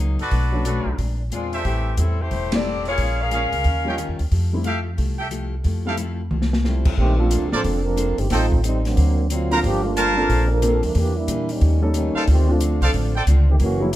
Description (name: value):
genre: jazz, big band swing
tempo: 181 BPM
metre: 4/4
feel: swing 64% on 8ths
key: F major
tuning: A4 = 439 Hz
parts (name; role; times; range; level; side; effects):
- fingerpicked steel-string acoustic guitar; accompaniment; 0.0-14.0 s; G2 to C5; -31 LUFS; left 4 dB; none
- upright bass; bass; 0.0-14.0 s; E1 to Bb2; -20 LUFS; equal; none
- clear trumpet section; stabs; 0.2-13.2 s; Gb4 to A#5; -25 LUFS; right 1 dB; none
- open jazz drum kit; drums; 0.2-14.0 s; crash cymbal, hi-hat, kick drum, ride cymbal, snare drum, toms; -25 LUFS; equal; none
- warm baby grand piano; accompaniment; 0.5-7.3, 9.5-13.9 s; F3 to A4; -26 LUFS; left 1 dB; none
- warm saxophone section; melody; 1.3-4.2 s; E3 to F5; -24 LUFS; left 2 dB; none
- mellow trombone section; second line; 6.6-14.0 s; Eb3 to Bb4; -23 LUFS; right 2 dB; none
room: light reverb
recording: none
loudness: -18 LUFS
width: side -14 dB against mid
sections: 0.0-7.0 A section; 7.0-14.0 B section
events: band accent 2.5; drum fill 6.3-6.6; trombone section solo 7.0-14.0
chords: 0.3 Bm7; 1.0 Bb9; 1.6 Am7; 3.0 Bbm7; 3.7 Eb9; 4.3 Fmaj9; 7.0 Bbmaj9; 8.3 Am7b5; 9.0 D7alt; 9.6 Gm11; 11.0 Em7b5; 11.6 Eb7#11; 12.3 Dm7